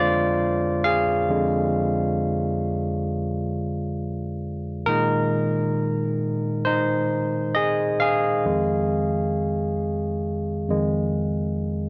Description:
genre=R&B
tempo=67 BPM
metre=4/4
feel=swing 63% on 16ths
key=F dorian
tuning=A4 = 435 Hz
part: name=barky tine electric piano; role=solo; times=0.0-11.9 s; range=F2 to F5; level=-24 LUFS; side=equal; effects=overdrive
room=light reverb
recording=none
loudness=-24 LUFS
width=mono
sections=0.0-11.9 A section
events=tine electric piano solo 0.0-11.9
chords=0.0 Fm6; 4.9 Bb9sus4; 8.4 Fm7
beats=0.38 | 1.27 2.17 3.06 3.96 | 4.86 5.75 6.65 7.54 | 8.44 9.33 10.23 11.12

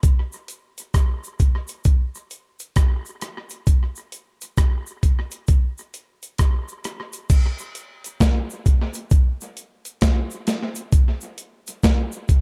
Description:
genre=reggae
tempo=66 BPM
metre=4/4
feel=swing 64% on 16ths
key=none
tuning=none
part: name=breakbeat sampler-style drum kit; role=drums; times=0.0-12.4 s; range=crash cymbal, hi-hat, kick drum, rim click, snare drum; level=-20 LUFS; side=equal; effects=none
part: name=cabasa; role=percussion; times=0.0-12.4 s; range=none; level=-40 LUFS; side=equal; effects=none
room=little or no reverb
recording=echo-heavy mix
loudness=-22 LUFS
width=mono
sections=0.0-7.3 A section; 7.3-12.4 B section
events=none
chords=none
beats=| 0.04 0.94 1.85 2.76 | 3.67 4.58 5.48 6.39 | 7.30 8.21 9.11 10.02 | 10.93 11.83

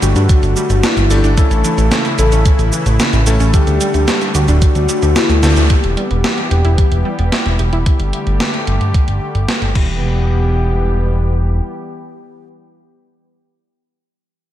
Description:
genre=synthwave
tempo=111 BPM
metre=4/4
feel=straight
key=E dorian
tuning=A4 = 441 Hz
part: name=soft octave-layered synth lead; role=melody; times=0.0-12.8 s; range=E4 to A4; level=-21 LUFS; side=left 3 dB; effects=chorus, tremolo, tape echo, slapback echo
part: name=soft synth bell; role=second line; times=0.0-5.6 s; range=E4 to A4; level=-27 LUFS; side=left 2 dB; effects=none
part: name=warm analog pad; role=sustained chords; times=0.0-12.8 s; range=C#3 to G4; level=-22 LUFS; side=left 1 dB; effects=wide subtle chorus, sidechain pumping
part: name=wide unison pluck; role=arpeggios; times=0.0-10.3 s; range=C#3 to G4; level=-24 LUFS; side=right 2 dB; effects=ping-pong delay, slapback echo
part: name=clear electric grand piano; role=stabs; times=0.0-5.7 s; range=G3 to A4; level=-25 LUFS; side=left 2 dB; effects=slapback echo
part: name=fat analog bass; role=bass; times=0.0-11.6 s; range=D1 to G2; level=-14 LUFS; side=equal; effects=tube saturation, sidechain pumping
part: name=gated 80s digital drum machine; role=drums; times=0.0-9.9 s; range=crash cymbal, hi-hat, shaker, snare drum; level=-20 LUFS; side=right 1 dB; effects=gated reverb, gated reverb snare
part: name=electronic kick drum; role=drums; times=0.3-9.9 s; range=none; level=-12 LUFS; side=equal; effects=none
room=light reverb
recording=none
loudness=-12 LUFS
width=side -12 dB against mid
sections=0.0-5.7 A section; 5.7-10.0 B section; 10.0-14.3 C section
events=drum fill 5.4; band accent 5.4; filter sweep on analog synth bass 5.7-10.0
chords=0.0 Gsus2; 1.4 A; 3.5 Dsus4; 5.7 Em; 7.9 Gsus2; 9.8 Em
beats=0.29 0.84 | 1.38 1.92 2.46 3.00 | 3.54 4.08 4.62 5.16 | 5.70 6.24 6.78 7.32 | 7.86 8.40 8.94 9.48 | 10.03 10.57 11.11 11.65 | 12.19 12.73

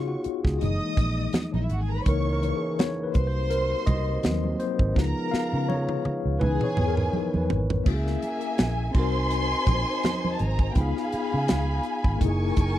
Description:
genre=lush 1970s-style soul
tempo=83 BPM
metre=4/4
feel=swing 54% on 16ths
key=C# dorian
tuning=A4 = 439 Hz
part: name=warm symphonic violin section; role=second line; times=0.0-12.8 s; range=A#3 to D#6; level=-33 LUFS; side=right 2 dB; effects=none
part: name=tine electric piano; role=accompaniment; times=0.0-12.8 s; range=E3 to E#5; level=-29 LUFS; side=left 4 dB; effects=medium stereo tremolo
part: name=vintage muted fingered electric bass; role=bass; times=0.0-12.8 s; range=F#1 to C#3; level=-26 LUFS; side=right 1 dB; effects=none
part: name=tight funk drum kit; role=drums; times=0.2-12.8 s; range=crash cymbal, hi-hat, kick drum, snare drum, toms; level=-25 LUFS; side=right 1 dB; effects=none
part: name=congas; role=percussion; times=0.6-12.8 s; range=none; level=-33 LUFS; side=right 3 dB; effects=none
part: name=dark French horn section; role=sustained chords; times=2.1-7.8 s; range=B#2 to E#4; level=-35 LUFS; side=right 1 dB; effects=none
part: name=warm studio violin section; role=melody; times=8.2-12.8 s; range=G5 to B#5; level=-31 LUFS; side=left 1 dB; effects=none
room=little or no reverb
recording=dry, close 1970s-style studio recording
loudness=-23 LUFS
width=side -13 dB against mid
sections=0.0-7.9 A section; 7.9-12.8 B section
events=tine electric piano solo 0.0-7.9; drum fill 5.0-7.9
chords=0.0 C#7; 0.6 F#13 (rootless); 2.1 C#m69; 3.1 G#9/B# (rootless); 5.0 C#7; 6.4 C#m9; 7.9 C#m6; 8.9 G#9; 10.8 C#7; 12.2 F#13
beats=0.61 1.34 | 2.06 2.79 3.51 4.24 | 4.96 5.69 6.41 7.14 | 7.86 8.59 9.31 10.04 | 10.76 11.49 12.21

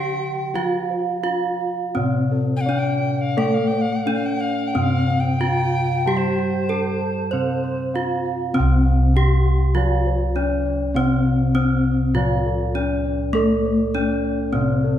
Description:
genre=Javanese gamelan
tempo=85-100 BPM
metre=4/4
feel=straight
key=C pelog barang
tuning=A4 = 440 Hz
part: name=gamelan-type bronze metallophone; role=melody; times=0.0-15.0 s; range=A3+20c to C5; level=-23 LUFS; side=left 1 dB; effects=none
part: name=breathy bright alto recorder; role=second line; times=0.0-7.8 s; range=C5 to G5+36c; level=-27 LUFS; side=left 2 dB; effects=none
part: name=gamelan-type bronze metallophone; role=accompaniment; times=0.0-15.0 s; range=C3 to C4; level=-24 LUFS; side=equal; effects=none
part: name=gamelan-type bossed gongs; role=arpeggios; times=0.0-15.0 s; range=A4+20c to C6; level=-30 LUFS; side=left 6 dB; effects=none
part: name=gamelan-type bronze metallophone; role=arpeggios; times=0.0-15.0 s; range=A4+20c to C6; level=-30 LUFS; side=right 6 dB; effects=none
part: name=gamelan-type bossed gongs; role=bass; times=0.0-15.0 s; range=C2 to A4+20c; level=-24 LUFS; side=equal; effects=none
room=wet recital hall reverb, RT60 1.8 s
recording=recorded in a church or concert hall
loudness=-18 LUFS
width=side -10 dB against mid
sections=0.0-8.6 A section; 8.6-15.0 B section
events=none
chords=none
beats=| 0.54 1.25 1.95 2.66 | 3.36 4.06 4.74 5.41 | 6.07 6.71 7.34 7.95 | 8.56 9.15 9.75 10.35 | 10.95 11.55 12.14 12.74 | 13.34 13.94 14.54

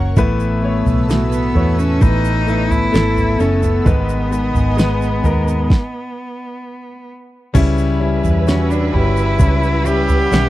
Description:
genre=pop ballad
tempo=65 BPM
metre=4/4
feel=straight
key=unclear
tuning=A4 = 441 Hz
part: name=clear concert grand piano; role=accompaniment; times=0.0-10.5 s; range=G#2 to C#6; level=-19 LUFS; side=left 3 dB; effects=none
part: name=airy breathy pad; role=sustained chords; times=0.0-10.5 s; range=B3 to E6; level=-29 LUFS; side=equal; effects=chorus
part: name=vintage muted fingered electric bass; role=bass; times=0.0-10.5 s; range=F#1 to E2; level=-18 LUFS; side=equal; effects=none
part: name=smooth R&B drum kit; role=drums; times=0.2-10.5 s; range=crash cymbal, kick drum, snare drum, toms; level=-17 LUFS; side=right 1 dB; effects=none
part: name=tube shaker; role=percussion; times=0.2-10.5 s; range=none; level=-39 LUFS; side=right 18 dB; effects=none
part: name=rich cello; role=melody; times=1.1-10.5 s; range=A3 to G4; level=-21 LUFS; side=right 1 dB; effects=none
part: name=warm studio violin section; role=second line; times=7.5-10.5 s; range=B4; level=-26 LUFS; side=right 4 dB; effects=none
room=little or no reverb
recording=dry, close 1970s-style studio recording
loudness=-13 LUFS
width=side -15 dB against mid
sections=0.0-7.6 A section; 7.6-10.5 A section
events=stop 5.7-7.6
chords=0.2 Asus2; 3.9 G#m; 7.6 C#dim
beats=| 0.17 1.09 2.01 2.94 | 3.86 4.78 5.71 6.63 | 7.55 8.48 9.40 10.32

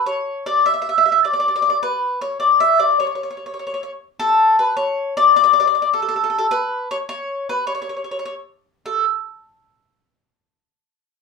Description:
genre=italian folk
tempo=103 BPM (dotted quarters)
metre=6/8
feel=straight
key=unclear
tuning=A4 = 440 Hz
part: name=mandolin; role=solo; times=0.0-9.0 s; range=A4 to E5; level=-16 LUFS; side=left 2 dB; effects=none
room=wet studio reverb, RT60 0.5 s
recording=heard from further back in the room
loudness=-16 LUFS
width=side -4 dB against mid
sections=0.0-4.2 A section; 4.2-8.9 B section; 8.9-10.0 C section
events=none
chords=none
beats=0.08 | 0.66 1.25 | 1.83 2.42 | 3.00 3.59 | 4.18 4.77 | 5.35 5.93 | 6.51 7.09 | 7.68 8.26 | 8.85

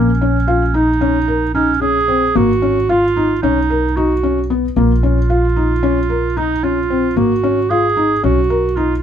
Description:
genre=contemporary instrumental, chamber music in an uneven meter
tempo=224 BPM (eighths)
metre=9/8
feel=straight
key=Bb minor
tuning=A4 = 440 Hz
part: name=mellow clarinet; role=second line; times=0.0-9.0 s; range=Db4 to Ab4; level=-17 LUFS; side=right 6 dB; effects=none
part: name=felt-muted upright piano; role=arpeggios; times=0.0-8.9 s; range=Bb3 to Bb4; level=-17 LUFS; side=left 4 dB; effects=none
part: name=upright bass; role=bass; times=0.0-9.0 s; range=Ab1 to B1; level=-19 LUFS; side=equal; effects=none
room=light reverb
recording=dark, warm production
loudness=-13 LUFS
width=side -9 dB against mid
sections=0.0-9.0 A section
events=none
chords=0.0 Bbm7; 2.4 Ab9sus4; 3.4 B; 4.8 Bbm; 7.2 Ab9sus4; 8.2 Bmaj7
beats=0.21 0.48 0.75 1.01 1.28 1.55 1.82 2.09 | 2.35 2.62 2.89 3.16 3.43 3.69 3.96 4.23 4.50 | 4.76 5.03 5.30 5.57 5.83 6.10 6.37 6.64 6.90 | 7.17 7.44 7.71 7.97 8.24 8.51 8.77

